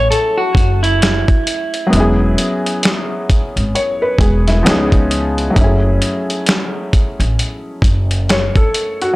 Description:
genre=lo-fi hip hop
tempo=66 BPM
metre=4/4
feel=swing 59% on 16ths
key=F# dorian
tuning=A4 = 440 Hz
part: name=clean electric guitar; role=second line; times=0.0-1.9 s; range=E4 to A4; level=-17 LUFS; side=right 1 dB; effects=low-pass filter, analog delay
part: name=felt-muted upright piano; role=accompaniment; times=0.0-9.2 s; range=E#3 to C#5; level=-18 LUFS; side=left 1 dB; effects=cassette tape, low-pass filter
part: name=upright bass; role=bass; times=0.0-8.5 s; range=E1 to C#2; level=-16 LUFS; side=equal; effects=none
part: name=dusty soul sampler-style drum kit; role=drums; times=0.1-9.2 s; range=hi-hat, kick drum, snare drum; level=-15 LUFS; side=equal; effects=none
room=digital ambience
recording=dry, gritty hardware recording, transformer saturation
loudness=-12 LUFS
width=side -19 dB against mid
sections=0.0-9.2 A section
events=none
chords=0.0 F#m9; 1.9 E6; 4.7 C#7; 5.6 F#m9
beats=0.11 1.02 | 1.93 2.83 3.74 4.65 | 5.56 6.47 7.38 8.29

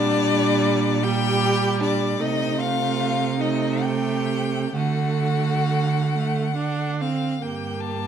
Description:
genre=classical, slow romantic movement for string quartet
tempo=43-52 BPM (dotted quarters)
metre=6/8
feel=rubato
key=G minor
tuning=A4 = 444 Hz
part: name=rich violin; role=melody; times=0.0-8.1 s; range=D5 to A5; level=-27 LUFS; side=left 7 dB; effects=none
part: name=rich violin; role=second line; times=0.0-8.1 s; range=D4 to G4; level=-27 LUFS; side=left 4 dB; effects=none
part: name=rich viola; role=accompaniment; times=0.0-8.1 s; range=G3 to D4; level=-26 LUFS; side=right 4 dB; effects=none
part: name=rich cello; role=bass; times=0.0-8.1 s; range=G2 to D3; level=-24 LUFS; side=right 6 dB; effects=none
room=moderate recital hall reverb, RT60 1.8 s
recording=close, detailed microphones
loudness=-20 LUFS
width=side -8 dB against mid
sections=0.0-7.4 A section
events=none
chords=0.0 Gm/Bb; 2.2 F9/C; 4.8 D; 7.4 Gm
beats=1.04 | 2.20 3.40 | 4.75 6.12 | 7.42

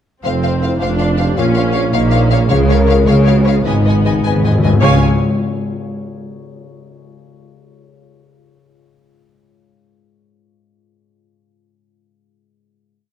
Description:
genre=cinematic, heroic adventure film score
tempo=105 BPM (dotted quarters)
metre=6/8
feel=straight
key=Db mixolydian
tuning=A4 = 440 Hz
part: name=warm symphonic violin section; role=melody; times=0.2-5.0 s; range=F5 to Ab5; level=-24 LUFS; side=left 4 dB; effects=none
part: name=warm symphonic violin section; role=second line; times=0.2-5.0 s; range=Cb5 to F5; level=-24 LUFS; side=left 4 dB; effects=none
part: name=rich symphonic viola section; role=accompaniment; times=0.2-5.0 s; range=Ab3 to Db5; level=-21 LUFS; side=right 1 dB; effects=none
part: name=concert harp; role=arpeggios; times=0.2-6.0 s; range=F2 to Ab5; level=-22 LUFS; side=left 6 dB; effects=none
part: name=mellow tuba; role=bass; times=0.2-5.0 s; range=F1 to Db2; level=-19 LUFS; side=right 3 dB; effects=none
part: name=warm symphonic cello section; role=bass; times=0.2-5.0 s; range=F2 to Db3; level=-19 LUFS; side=right 1 dB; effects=none
part: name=warm symphonic double bass section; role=bass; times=0.2-5.0 s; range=F1 to Db2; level=-18 LUFS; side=right 3 dB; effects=none
part: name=mellow French horn section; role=sustained chords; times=0.3-5.0 s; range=A3 to Bb4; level=-21 LUFS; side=left 4 dB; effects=none
part: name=timpani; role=percussion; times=2.5-5.0 s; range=Ab2 to Db3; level=-19 LUFS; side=left 1 dB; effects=none
room=wet scoring stage reverb, RT60 1.7 s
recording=dark, warm production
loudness=-11 LUFS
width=side -10 dB against mid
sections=0.2-4.8 theme; 4.8-6.0 final chord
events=timpani fill 3.7-4.8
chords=0.2 F; 1.4 Bbm; 2.5 Db; 3.7 Abm; 4.8 Db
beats=| 0.24 0.81 | 1.38 1.95 | 2.52 3.08 | 3.66 4.25 | 4.83 5.40

